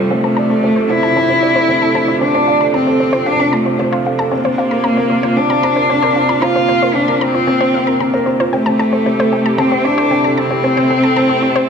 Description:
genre	piano and strings electronica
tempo	114 BPM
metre	4/4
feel	straight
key	D minor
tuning	A4 = 440 Hz
part	rich cello	melody	0.0-11.7 s	G3 to F4	-14 LUFS	left 1 dB	none
part	muted studio string section	sustained chords	0.0-11.7 s	C3 to A4	-22 LUFS	right 4 dB	none
part	wide unison pluck	arpeggios	0.0-11.6 s	C5 to Bb5	-22 LUFS	left 2 dB	ping-pong delay
part	felt-muted upright piano	riff	0.0-11.7 s	C4 to F5	-18 LUFS	equal	low-pass filter, ping-pong delay
room	wet recital hall reverb, RT60 1.6 s, small room reverb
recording	none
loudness	-12 LUFS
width	side -6 dB against mid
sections	0.0-11.7 A section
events	filter sweep on synth arpeggio sound 0.0-11.7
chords	0.0 Dm7; 4.3 Bbadd9; 8.5 Am7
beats	| 0.11 0.64 1.17 1.69 | 2.22 2.74 3.27 3.80 | 4.32 4.85 5.38 5.90 | 6.43 6.95 7.48 8.01 | 8.53 9.06 9.59 10.11 | 10.64 11.16 11.69

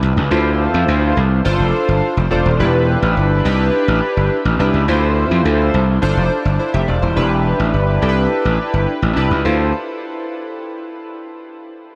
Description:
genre	early-eighties boogie funk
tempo	105 BPM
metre	4/4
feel	straight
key	D dorian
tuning	A4 = 440 Hz
part	gritty slap bass	bass	0.0-9.7 s	Eb1 to F2	-18 LUFS	equal	overdrive
part	chorused polysynth	accompaniment	0.3-9.7 s	D4 to E5	-20 LUFS	equal	none
room	wet huge ambient reverb, RT60 7.9 s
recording	dreamy mix soaked in reverb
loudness	-16 LUFS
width	mono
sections	0.3-9.5 A section; 9.5-11.7 B section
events	none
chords	0.3 Dm7; 1.5 G7sus4; 2.6 Em7; 3.5 Cmaj9; 4.9 Dm7; 6.0 G7sus4; 7.2 Em7; 8.0 Cmaj9; 9.5 Dm7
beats	| 0.31 0.88 1.45 2.02 | 2.59 3.17 3.74 4.31 | 4.88 5.45 6.02 6.59 | 7.17 7.74 8.31 8.88 | 9.45

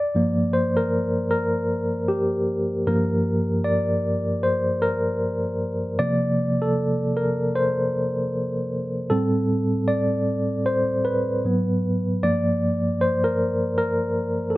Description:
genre	R&B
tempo	77 BPM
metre	4/4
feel	swing 60% on 16ths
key	G minor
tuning	A4 = 439 Hz
part	tine electric piano	solo	0.0-14.6 s	G2 to D5	-20 LUFS	equal	fast tremolo
room	moderate studio reverb, RT60 0.6 s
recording	none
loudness	-20 LUFS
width	side -18 dB against mid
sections	0.0-14.6 A section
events	tine electric piano solo 0.0-14.6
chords	0.0 Gm7; 6.0 C7sus4; 9.1 Am7; 11.4 Abm7; 12.2 Gm7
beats	0.53 1.31 2.09 | 2.87 3.65 4.43 5.21 | 5.99 6.77 7.55 8.33 | 9.11 9.88 10.66 11.44 | 12.22 13.00 13.78 14.56

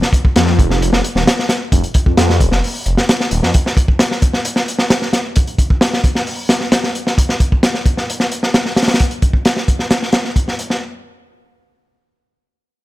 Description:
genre	breakbeat, breaks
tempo	132 BPM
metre	4/4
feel	straight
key	unclear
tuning	A4 = 439 Hz
part	crunchy breakbeat drum kit	drums	0.0-10.8 s	hi-hat, kick drum, snare drum	-13 LUFS	equal	none
part	phased detuned saw bass	bass	0.4-3.5 s	Eb1 to F2	-16 LUFS	equal	phaser
room	little or no reverb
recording	none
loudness	-13 LUFS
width	side -17 dB against mid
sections	0.0-10.8 A section; 10.8-12.8 B section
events	none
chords	none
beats	0.36 0.81 1.27 | 1.72 2.18 2.63 3.08 | 3.54 3.99 4.45 4.90 | 5.36 5.81 6.27 6.72 | 7.18 7.63 8.09 8.54 | 8.99 9.45 9.90 10.36

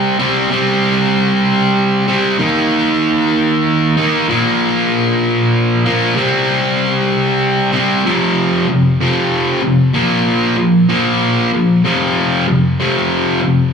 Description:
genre	rock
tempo	64 BPM (dotted quarters)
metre	6/8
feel	straight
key	unclear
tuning	A4 = 441 Hz
part	distorted electric guitar	solo	0.0-13.7 s	F2 to Eb4	-12 LUFS	equal	distortion, slapback echo, tape echo
room	wet club reverb, RT60 0.7 s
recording	live gig heard through the venue's PA, club reverb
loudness	-12 LUFS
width	side -6 dB against mid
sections	0.0-8.1 A section; 8.1-13.7 B section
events	none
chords	0.0 C5; 2.4 Eb5; 4.3 Bb5; 6.2 C5; 8.1 F5; 9.9 Bb5; 11.8 F5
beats	| 0.50 1.44 | 2.39 3.33 | 4.28 5.22 | 6.17 7.11 | 8.06 9.00 | 9.95 10.89 | 11.84 12.78

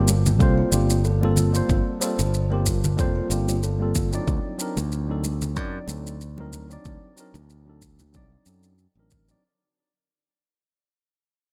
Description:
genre	sunset chillout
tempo	93 BPM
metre	4/4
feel	swing 55% on 16ths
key	unclear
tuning	A4 = 440 Hz
part	tine electric piano	accompaniment	0.0-9.4 s	F#3 to D5	-30 LUFS	equal	vintage 12-bit sampler grit, delay
part	kalimba	arpeggios	0.0-4.3 s	F4 to C5	-35 LUFS	equal	delay
part	modern bright fingered electric bass	bass	0.0-9.3 s	F1 to F#2	-26 LUFS	equal	none
part	shaker	drums	0.1-9.4 s	none	-32 LUFS	equal	studio reverb
part	congas	percussion	0.1-9.3 s	none	-32 LUFS	equal	none
part	electronic kick drum	drums	0.4-9.3 s	none	-27 LUFS	equal	studio reverb
room	light reverb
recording	bright 1980s-style digital production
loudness	-23 LUFS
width	mono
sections	0.0-9.4 A section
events	fade-out 0.0-9.4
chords	0.0 Gm11; 4.3 D7b9b13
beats	0.40 1.04 | 1.69 2.33 2.98 3.62 | 4.27 4.91 5.56 6.20 | 6.85 7.49 8.14 8.78

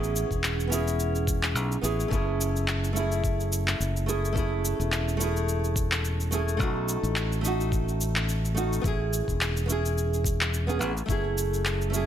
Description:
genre	sunset chillout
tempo	107 BPM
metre	4/4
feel	swing 56% on 16ths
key	F# dorian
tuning	A4 = 439 Hz
part	nylon-string guitar	accompaniment	0.0-12.1 s	A3 to G#4	-29 LUFS	right 2 dB	auto-pan, ping-pong delay
part	modern bright fingered electric bass	bass	0.0-12.1 s	E1 to B1	-28 LUFS	equal	none
part	electronic cabasa and handclaps	drums	0.0-12.1 s	none	-31 LUFS	left 1 dB	none
part	electronic kick drum	drums	0.3-11.2 s	none	-29 LUFS	equal	none
room	digital ambience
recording	none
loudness	-24 LUFS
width	side -10 dB against mid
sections	0.0-12.1 A section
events	none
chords	0.0 Amaj7; 2.1 F#m7; 6.6 B9; 8.8 Amaj7; 11.1 F#m7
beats	0.43 0.99 1.55 | 2.12 2.68 3.24 3.80 | 4.36 4.92 5.48 6.04 | 6.60 7.16 7.72 8.28 | 8.85 9.41 9.97 10.53 | 11.09 11.65

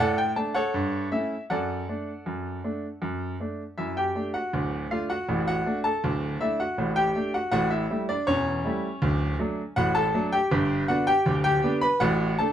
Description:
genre	ragtime piano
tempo	80 BPM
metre	2/4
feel	straight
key	D major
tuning	A4 = 436 Hz
part	bright grand piano	solo	0.0-12.5 s	D1 to B5	-24 LUFS	equal	none
room	light reverb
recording	dark, warm production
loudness	-24 LUFS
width	side -10 dB against mid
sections	0.0-4.5 A section; 4.5-12.5 A section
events	none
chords	0.0 D5/A; 0.7 A7/G; 1.5 D/F#; 4.5 D; 7.5 A7; 9.0 D; 10.5 G; 12.0 D/A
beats	| 0.00 0.75 | 1.50 2.27 | 3.02 3.78 | 4.54 5.29 | 6.04 6.79 | 7.53 8.28 | 9.03 9.77 | 10.52 11.27 | 12.01

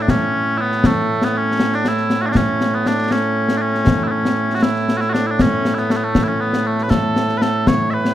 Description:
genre	scottish traditional, Scottish pipe music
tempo	79 BPM (dotted quarters)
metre	6/8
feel	straight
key	A major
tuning	A4 = 443 Hz
part	mellow small bagpipes	melody	0.0-8.1 s	A2 to E5	-17 LUFS	right 1 dB	none
part	concert snare drum and concert bass drum	drums	0.1-8.1 s	none	-19 LUFS	left 1 dB	none
room	light reverb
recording	none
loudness	-15 LUFS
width	side -12 dB against mid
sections	0.0-6.9 A section; 6.9-8.1 B section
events	none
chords	none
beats	0.08 | 0.84 1.60 | 2.36 3.12 | 3.88 4.64 | 5.40 6.16 | 6.92 7.68

